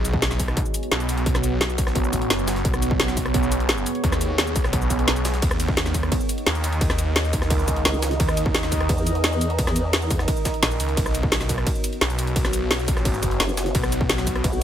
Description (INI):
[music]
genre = dark technical drum and bass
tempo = 173 BPM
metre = 4/4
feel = straight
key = unclear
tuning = A4 = 441 Hz
[part]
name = deep dark ambient pad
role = sustained chords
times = 0.0-14.6 s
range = B3 to Eb5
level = -27 LUFS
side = right 1 dB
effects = chorus, built-in reverb, sidechain pumping
[part]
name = snarling distorted saw bass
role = bass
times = 0.0-14.4 s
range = F#1 to D#2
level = -25 LUFS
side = equal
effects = distortion, sidechain pumping
[part]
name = drum and bass drum kit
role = drums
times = 0.0-14.6 s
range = cabasa, hi-hat, ride cymbal, rim click, snare drum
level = -25 LUFS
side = equal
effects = overdrive
[part]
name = jungle sampler-style drum kit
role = drums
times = 0.0-14.5 s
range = hi-hat, snare drum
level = -34 LUFS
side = left 1 dB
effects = none
[part]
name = electronic kick drum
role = drums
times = 0.1-14.5 s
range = none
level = -24 LUFS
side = equal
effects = distortion
[part]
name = formant-sweep wobble bass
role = bass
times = 7.9-10.3, 13.4-14.6 s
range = F#1 to Fb2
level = -24 LUFS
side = equal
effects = chorus
[sound]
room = little or no reverb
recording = none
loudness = -20 LUFS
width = side -10 dB against mid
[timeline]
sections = 0.0-14.6 A section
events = none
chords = 0.0 B; 5.4 Eb5; 11.0 B5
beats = 0.22 0.57 0.92 | 1.26 1.61 1.96 2.30 | 2.65 3.00 3.34 3.69 | 4.04 4.38 4.73 5.08 | 5.42 5.77 6.12 6.46 | 6.81 7.16 7.50 7.85 | 8.20 8.54 8.89 9.24 | 9.59 9.93 10.28 10.63 | 10.97 11.32 11.67 12.01 | 12.36 12.71 13.05 13.40 | 13.75 14.09 14.44